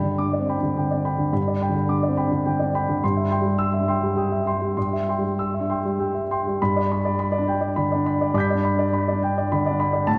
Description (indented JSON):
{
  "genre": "neoclassical minimalist piano",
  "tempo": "104 BPM",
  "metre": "3/4",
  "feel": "rubato",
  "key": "G major",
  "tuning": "A4 = 441 Hz",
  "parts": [
    { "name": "warm concert grand piano", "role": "solo", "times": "0.0-10.2 s", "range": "G2 to B6", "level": "-23 LUFS", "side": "equal", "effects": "analog delay" }
  ],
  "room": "wet plate reverb, RT60 2.8 s",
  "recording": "dreamy mix soaked in reverb",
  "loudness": "-23 LUFS",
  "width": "mono",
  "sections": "0.0-6.6 A section; 6.6-10.2 B section",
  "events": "none",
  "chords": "0.0 G; 3.0 C/G; 6.6 G"
}